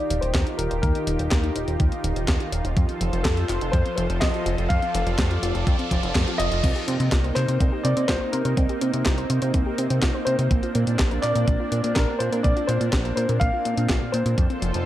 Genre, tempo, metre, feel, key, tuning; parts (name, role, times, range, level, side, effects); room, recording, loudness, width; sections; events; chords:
italo disco; 124 BPM; 4/4; straight; A4 = 440 Hz
warm baby grand piano; melody; 0.0-14.9 s; A4 to F5; -28 LUFS; left 1 dB; low-pass filter, digital delay
lush unison pad; sustained chords; 0.0-14.9 s; Eb3 to D5; -29 LUFS; equal; chorus
soft round pluck; arpeggios; 0.0-14.8 s; Bb2 to C5; -32 LUFS; equal; chorus, tape echo
riser and swell; sound effects; 1.9-6.6 s; -36 LUFS; right 2 dB
chorused synth bass; bass; 0.1-14.8 s; Eb1 to C3; -25 LUFS; equal
clean 12-bit digital drum machine; drums; 0.1-14.8 s; crash cymbal, handclaps, hi-hat, snare drum; -28 LUFS; equal; gated reverb
electronic kick drum; drums; 0.3-14.5 s; -23 LUFS; equal
light reverb; -20 LUFS; side -13 dB against mid
0.0-6.6 A section; 6.6-14.9 B section
filter sweep on synth arpeggio sound 0.0-6.6; filter sweep on grand piano 0.0-6.6; riser 1.9-6.6; swell 5.7-6.6
0.0 Ebadd9; 2.8 F; 6.6 Cm7; 10.5 Bbadd9